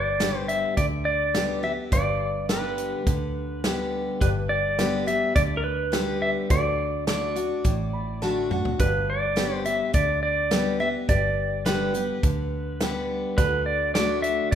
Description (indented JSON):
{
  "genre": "honky-tonk and classic country",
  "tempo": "105 BPM",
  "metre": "4/4",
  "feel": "straight",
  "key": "G major",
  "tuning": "A4 = 438 Hz",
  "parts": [
    { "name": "pedal steel guitar", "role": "melody", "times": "0.0-14.6 s", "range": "Bb4 to E5", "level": "-26 LUFS", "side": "equal", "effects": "none" },
    { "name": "dark upright piano", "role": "accompaniment", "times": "0.0-14.6 s", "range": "F#4 to B5", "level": "-38 LUFS", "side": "right 2 dB", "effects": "none" },
    { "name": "picked steel-string acoustic guitar", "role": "accompaniment", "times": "0.0-14.6 s", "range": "G2 to G4", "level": "-29 LUFS", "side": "left 2 dB", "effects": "none" },
    { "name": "vintage muted fingered electric bass", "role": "bass", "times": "0.0-14.6 s", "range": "G1 to D2", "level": "-31 LUFS", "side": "equal", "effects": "none" },
    { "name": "natural country drum kit", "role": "drums", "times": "0.2-14.6 s", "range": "hi-hat, kick drum, snare drum, toms", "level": "-26 LUFS", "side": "right 1 dB", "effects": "none" }
  ],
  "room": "moderate recital hall reverb, RT60 1.3 s",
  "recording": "minimal, uncompressed stereo recording",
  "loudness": "-22 LUFS",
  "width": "side -9 dB against mid",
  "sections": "0.0-14.6 A section",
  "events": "upright piano fill 7.7-8.8; drum fill 8.2-8.8",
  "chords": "0.0 G; 6.5 D; 8.8 G; 13.4 D"
}